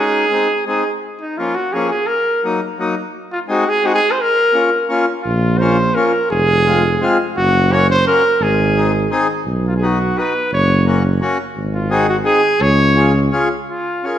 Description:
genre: alpine folk, alpine dance band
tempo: 171 BPM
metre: 3/4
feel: straight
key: unclear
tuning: A4 = 440 Hz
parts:
  - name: clear trumpet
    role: melody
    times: 0.0-14.2 s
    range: Eb4 to Db5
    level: -16 LUFS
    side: right 1 dB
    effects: none
  - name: accordion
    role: accompaniment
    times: 0.0-14.2 s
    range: F3 to Ab4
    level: -20 LUFS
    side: left 2 dB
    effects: none
  - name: mellow tuba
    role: bass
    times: 5.2-13.3 s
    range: F1 to Db2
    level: -17 LUFS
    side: equal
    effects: none
room: moderate scoring stage reverb, RT60 1.9 s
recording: recorded in a church or concert hall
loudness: -13 LUFS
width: side -10 dB against mid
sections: 0.0-13.7 A section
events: none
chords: 0.3 Ab; 1.0 Bbm; 2.1 Ebm; 3.1 Ab; 4.2 Bbm; 6.3 Fm; 7.4 Gb; 8.4 Ab; 9.5 Cb; 10.5 Gb; 11.6 Ab; 12.6 Db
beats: 0.32 0.67 | 1.03 1.39 1.74 | 2.09 2.44 2.79 | 3.14 3.48 3.83 | 4.18 4.53 4.89 | 5.25 5.61 5.96 | 6.31 6.67 7.01 | 7.36 7.71 8.06 | 8.41 8.76 9.11 | 9.47 9.82 10.18 | 10.53 10.88 11.22 | 11.57 11.91 12.26 | 12.61 12.96 13.32 | 13.68 14.04

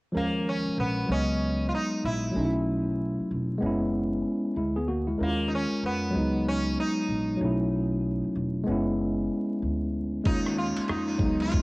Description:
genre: hip hop, jazz-hop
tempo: 95 BPM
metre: 4/4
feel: swing 63% on 16ths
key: Eb phrygian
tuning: A4 = 440 Hz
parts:
  - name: tine electric piano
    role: accompaniment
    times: 0.1-11.6 s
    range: F3 to Eb5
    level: -27 LUFS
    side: equal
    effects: medium stereo tremolo, cassette tape
  - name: upright bass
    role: bass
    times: 0.1-11.6 s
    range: E1 to F2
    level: -32 LUFS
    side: equal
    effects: none
  - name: sitar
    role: melody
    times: 0.2-11.6 s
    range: Bb3 to F4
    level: -32 LUFS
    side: equal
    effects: cassette tape
  - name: dusty soul sampler-style drum kit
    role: drums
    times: 10.3-11.6 s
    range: hi-hat, kick drum, ride cymbal, rim click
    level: -29 LUFS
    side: equal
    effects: cassette tape
room: light reverb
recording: home recording on cassette, vinyl crackle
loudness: -25 LUFS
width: side -23 dB against mid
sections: 0.1-11.6 A section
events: none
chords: 0.1 Eb9sus4; 1.1 Db9sus4; 2.4 B9sus4; 3.6 Gb9sus4; 5.2 Eb9sus4; 6.1 Db9sus4; 7.4 B9sus4; 8.7 Gb9sus4; 10.3 Eb9sus4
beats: | 0.15 0.78 1.41 2.04 | 2.67 3.30 3.94 4.57 | 5.20 5.83 6.46 7.09 | 7.73 8.36 8.99 9.62 | 10.25 10.88 11.52

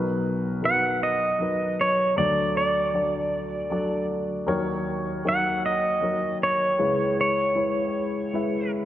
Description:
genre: acoustic folk-pop ballad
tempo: 78 BPM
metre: 3/4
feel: straight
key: B major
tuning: A4 = 440 Hz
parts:
  - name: warm baby grand piano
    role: accompaniment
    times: 0.0-8.9 s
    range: B1 to E5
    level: -26 LUFS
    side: left 1 dB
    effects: none
  - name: pedal steel guitar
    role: melody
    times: 0.7-8.7 s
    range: C#5 to F#5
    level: -23 LUFS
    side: right 1 dB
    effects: none
room: wet concert hall reverb, RT60 2.2 s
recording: dark, warm production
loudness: -22 LUFS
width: side -12 dB against mid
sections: 0.0-8.9 A section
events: none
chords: 0.0 Bmaj7; 2.2 D; 4.5 D#m7; 6.8 C#m7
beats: 0.63 1.41 | 2.18 2.95 3.71 | 4.48 5.25 6.02 | 6.79 7.56 8.34

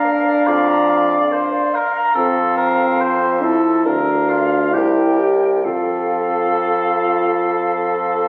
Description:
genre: classical, slow romantic movement for wind quintet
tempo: 64-72 BPM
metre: 4/4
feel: rubato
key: F major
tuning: A4 = 440 Hz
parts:
  - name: silver concert flute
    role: melody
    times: 0.0-8.3 s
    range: F5 to G5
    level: -26 LUFS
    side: equal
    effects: none
  - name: mellow oboe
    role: second line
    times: 0.0-8.3 s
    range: F4 to D5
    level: -22 LUFS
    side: equal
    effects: none
  - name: mellow clarinet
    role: accompaniment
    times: 0.0-8.3 s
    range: A4 to Bb5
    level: -28 LUFS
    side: equal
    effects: none
  - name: warm French horn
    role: accompaniment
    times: 0.0-8.3 s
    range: C4 to G4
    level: -22 LUFS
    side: equal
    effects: none
  - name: warm bassoon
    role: bass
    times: 0.5-8.3 s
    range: C2 to F2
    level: -23 LUFS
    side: equal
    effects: none
room: moderate recital hall reverb, RT60 1.6 s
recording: recorded on a phone in the room, club reverb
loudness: -17 LUFS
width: mono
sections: 0.0-8.3 A section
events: none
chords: 0.0 Bb/F; 2.2 F; 3.9 Bb/D; 4.7 C7; 5.6 F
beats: 0.48 1.33 | 2.17 3.01 3.86 4.74 | 5.65 6.57 7.48

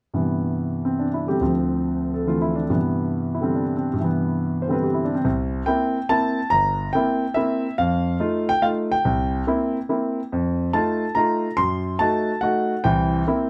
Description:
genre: jazz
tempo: 142 BPM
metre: 3/4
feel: swing 68% on 8ths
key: C major, C mixolydian from 5.2 s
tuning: A4 = 440 Hz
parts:
  - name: warm concert grand piano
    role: solo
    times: 0.1-13.5 s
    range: G1 to C6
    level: -22 LUFS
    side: equal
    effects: none
room: little or no reverb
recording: close, detailed microphones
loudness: -22 LUFS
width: mono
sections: 0.1-5.2 A section; 5.2-13.5 B section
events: none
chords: 0.1 Cmaj7/G; 1.4 Dm7; 2.7 Cmaj7/G; 5.2 C7; 7.8 F7; 9.0 C7; 10.3 F7; 11.6 F#dim7; 12.8 C7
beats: | 0.14 0.56 0.99 | 1.41 1.84 2.26 | 2.69 3.11 3.54 | 3.96 4.39 4.81 | 5.24 5.66 6.08 | 6.51 6.93 7.35 | 7.78 8.20 8.62 | 9.04 9.47 9.89 | 10.31 10.74 11.16 | 11.58 12.00 12.43 | 12.85 13.27

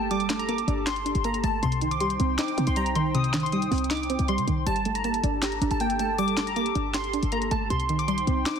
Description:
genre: hip hop, trap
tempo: 158 BPM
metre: 4/4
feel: half-time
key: G minor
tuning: A4 = 442 Hz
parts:
  - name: glassy wavetable pluck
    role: melody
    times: 0.0-8.6 s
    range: G5 to Eb6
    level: -28 LUFS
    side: left 1 dB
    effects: chorus, ping-pong delay
  - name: warbly dusty pluck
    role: accompaniment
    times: 0.0-8.6 s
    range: C3 to G4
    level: -28 LUFS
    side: right 2 dB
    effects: chorus
  - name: hollow soft pad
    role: sustained chords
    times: 0.0-8.6 s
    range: Eb4 to A5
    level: -34 LUFS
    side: right 2 dB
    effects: chorus
  - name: short 808-style bass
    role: bass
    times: 0.0-8.5 s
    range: G1 to C3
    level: -30 LUFS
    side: left 1 dB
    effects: none
  - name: trap drum kit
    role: drums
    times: 0.1-8.6 s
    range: handclaps, hi-hat, snare drum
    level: -32 LUFS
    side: left 1 dB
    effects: overdrive, vintage 12-bit sampler grit
room: light reverb, digital ambience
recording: dense, heavily limited modern master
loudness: -23 LUFS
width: side -7 dB against mid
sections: 0.0-8.6 A section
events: none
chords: 0.0 Gmadd9; 1.6 Cm; 4.7 Gmadd9; 7.7 Cm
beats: | 0.11 0.49 0.87 1.25 | 1.63 2.01 2.39 2.77 | 3.15 3.53 3.90 4.29 | 4.67 5.04 5.42 5.80 | 6.18 6.56 6.94 7.32 | 7.70 8.08 8.46

